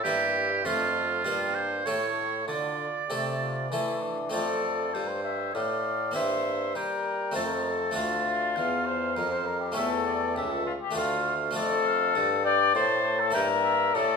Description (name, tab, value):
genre	classical, baroque-style sonata movement with continuo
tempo	100 BPM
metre	3/4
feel	straight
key	D minor, F major from 4.3 s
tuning	A4 = 442 Hz
part	mellow trumpet	melody	0.0-14.2 s	D4 to E5	-29 LUFS	left 8 dB	none
part	clear oboe	second line	0.0-14.2 s	F4 to A5	-30 LUFS	right 6 dB	none
part	clear bassoon	bass	0.0-14.2 s	C#2 to G3	-32 LUFS	right 2 dB	none
part	harpsichord	accompaniment	0.1-14.2 s	C#2 to A4	-33 LUFS	left 1 dB	none
room	wet recital hall reverb, RT60 1.5 s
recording	minimal, uncompressed stereo recording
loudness	-25 LUFS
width	side -5 dB against mid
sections	0.0-4.3 A section; 4.3-14.2 A section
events	none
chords	0.0 Edim/G; 0.6 Dm/F; 1.2 Gm; 1.9 A; 2.5 Dm; 4.3 F; 6.2 C7/G; 7.4 F; 8.0 Dm; 9.8 A7/E; 11.0 Dm; 11.6 Dm/F; 13.4 Edim/G